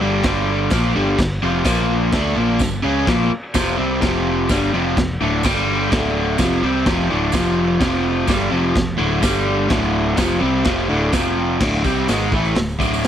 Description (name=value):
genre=garage rock duo or trio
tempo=127 BPM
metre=4/4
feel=straight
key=unclear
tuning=A4 = 438 Hz
part: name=overdriven electric guitar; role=riff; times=0.0-13.1 s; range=D2 to D4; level=-18 LUFS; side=equal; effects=none
part: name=modern bright picked electric bass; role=bass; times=0.0-13.1 s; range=D1 to D2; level=-24 LUFS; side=equal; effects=none
part: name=crunchy breakbeat drum kit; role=drums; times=0.2-13.1 s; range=crash cymbal, hi-hat, kick drum, snare drum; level=-22 LUFS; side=equal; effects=none
part: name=tambourine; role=percussion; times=0.7-13.1 s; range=none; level=-34 LUFS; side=right 8 dB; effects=none
room=light reverb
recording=none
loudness=-16 LUFS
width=side -10 dB against mid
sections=0.0-11.6 A section; 11.6-13.1 B section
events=none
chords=0.2 G5; 1.7 Bb5; 2.1 G5; 4.0 F5; 5.4 G5; 5.9 D5; 6.4 F5; 9.2 G5; 9.7 D5; 10.2 F5; 11.6 D5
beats=| 0.24 0.71 1.18 1.66 | 2.13 2.60 3.08 3.55 | 4.02 4.50 4.97 5.44 | 5.91 6.39 6.86 7.34 | 7.81 8.28 8.76 9.23 | 9.71 10.18 10.66 11.14 | 11.61 12.09 12.57 13.05